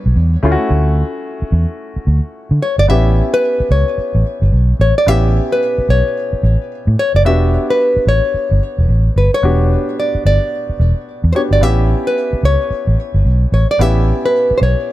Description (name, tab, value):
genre	R&B, new jack swing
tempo	110 BPM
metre	4/4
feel	swing 62% on 16ths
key	unclear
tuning	A4 = 440 Hz
part	nylon-string guitar	melody	0.0-14.9 s	B4 to E5	-17 LUFS	left 1 dB	none
part	warm grand piano	accompaniment	0.0-14.9 s	G3 to G4	-21 LUFS	left 1 dB	none
part	vintage muted fingered electric bass	bass	0.1-14.7 s	E1 to D3	-12 LUFS	equal	none
room	studio reverb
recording	none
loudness	-12 LUFS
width	side -15 dB against mid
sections	0.0-2.9 A section; 2.9-14.9 B section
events	none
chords	0.4 Dmaj7; 2.9 A9; 7.2 Em7; 11.6 A9